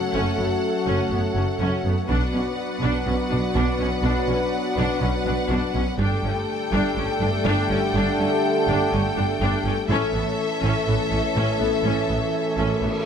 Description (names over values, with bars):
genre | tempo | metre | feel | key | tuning
cinematic, hybrid orchestral and electronic film score | 123 BPM | 4/4 | straight | unclear | A4 = 441 Hz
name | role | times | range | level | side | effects
rich symphonic violin section | melody | 0.0-13.1 s | E5 to G5 | -30 LUFS | left 3 dB | none
rich symphonic violin section | second line | 0.0-13.1 s | A4 to B4 | -30 LUFS | left 5 dB | none
chorused pulse-width pad | sustained chords | 0.0-13.1 s | E3 to D5 | -30 LUFS | equal | none
mellow French horn section | sustained chords | 0.0-13.1 s | C#4 to A4 | -30 LUFS | left 5 dB | none
mellow trombone section | sustained chords | 0.0-13.1 s | D3 to B3 | -29 LUFS | right 5 dB | none
clear symphonic viola section | accompaniment | 0.1-12.9 s | B3 to D4 | -30 LUFS | equal | none
rich symphonic cello section | bass | 0.1-12.9 s | F#2 to B2 | -28 LUFS | right 2 dB | none
rich symphonic double bass section | bass | 0.1-12.9 s | F#1 to B1 | -26 LUFS | right 2 dB | none
cymbal swell | sound effects | 12.6-13.1 s | none | -37 LUFS | right 2 dB | none
room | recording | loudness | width
light reverb | close, detailed microphones | -20 LUFS | side -7 dB against mid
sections
0.0-13.1 A section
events
cymbal swell 12.6-13.1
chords
0.0 F#m; 2.1 Bm; 6.0 Gsus2; 9.9 A